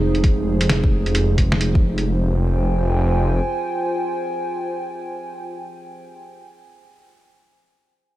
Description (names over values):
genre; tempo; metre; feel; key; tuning
future garage; 131 BPM; 4/4; swing 62% on 16ths; F minor; A4 = 441 Hz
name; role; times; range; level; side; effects
dark analog pad; sustained chords; 0.0-6.2 s; Ab3 to Ab5; -24 LUFS; right 1 dB; chorus, sidechain pumping
swelling detuned saw bass; bass; 0.0-3.4 s; F1; -19 LUFS; equal; sidechain pumping
lo-fi sampler-style drum kit; drums; 0.1-2.0 s; hi-hat, snare drum; -23 LUFS; equal; overdrive, studio reverb
electronic kick drum; drums; 0.2-1.8 s; none; -17 LUFS; equal; studio reverb
room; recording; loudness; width
light reverb; none; -18 LUFS; side -15 dB against mid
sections
0.0-2.1 A section; 2.1-5.7 B section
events
none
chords
0.0 Ab/F; 2.1 Fmadd9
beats
| 0.23 0.69 1.15 1.61 | 2.07 2.52 2.98 3.44 | 3.90 4.36 4.82 5.27